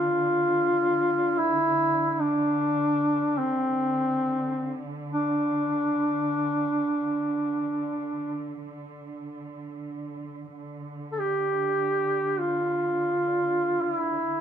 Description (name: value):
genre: caucasian folk, Caucasian lament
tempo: free time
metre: none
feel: none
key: D minor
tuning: A4 = 440 Hz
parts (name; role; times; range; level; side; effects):
- warm duduk; melody; 0.0-14.4 s; C4 to A4; -24 LUFS; equal; none
- muted studio string section; drone; 0.0-14.4 s; D3; -34 LUFS; right 2 dB; none
room: light reverb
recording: close, detailed microphones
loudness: -23 LUFS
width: side -8 dB against mid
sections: 0.0-10.6 A section; 10.6-14.4 A section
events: none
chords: none